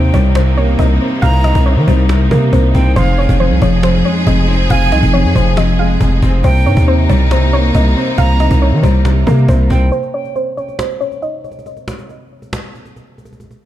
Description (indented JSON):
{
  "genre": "hip hop, trap",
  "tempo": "138 BPM",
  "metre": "4/4",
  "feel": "half-time",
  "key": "unclear",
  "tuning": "A4 = 440 Hz",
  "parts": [
    { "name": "soft round pluck", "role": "melody", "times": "0.0-11.4 s", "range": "Bb4 to F5", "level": "-20 LUFS", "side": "equal", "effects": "chorus, low-pass filter, ping-pong delay" },
    { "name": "warm concert grand piano", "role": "accompaniment", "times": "0.0-9.9 s", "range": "F2 to C4", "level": "-17 LUFS", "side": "left 1 dB", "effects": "analog chorus, low-pass filter" },
    { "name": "clear studio string section", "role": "sustained chords", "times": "0.0-9.9 s", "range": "C3 to Ab4", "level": "-20 LUFS", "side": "equal", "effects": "none" },
    { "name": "distorted 808-style bass", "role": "bass", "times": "0.0-9.9 s", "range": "F1 to Eb3", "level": "-12 LUFS", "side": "equal", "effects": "distortion" },
    { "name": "cajon", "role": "drums", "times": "0.1-13.6 s", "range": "none", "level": "-21 LUFS", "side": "equal", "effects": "none" },
    { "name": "breathy silver concert flute", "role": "second line", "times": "1.2-9.9 s", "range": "F5 to Bb5", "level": "-24 LUFS", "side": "right 3 dB", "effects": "ping-pong delay" }
  ],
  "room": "small room ambience",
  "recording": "none",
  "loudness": "-10 LUFS",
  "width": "side -13 dB against mid",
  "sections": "0.0-9.9 A section; 9.9-13.7 B section",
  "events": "break 9.9-13.7; filter sweep 9.9-13.7",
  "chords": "0.0 Cm7; 3.0 Fm7; 6.4 Cm7; 9.9 N.C."
}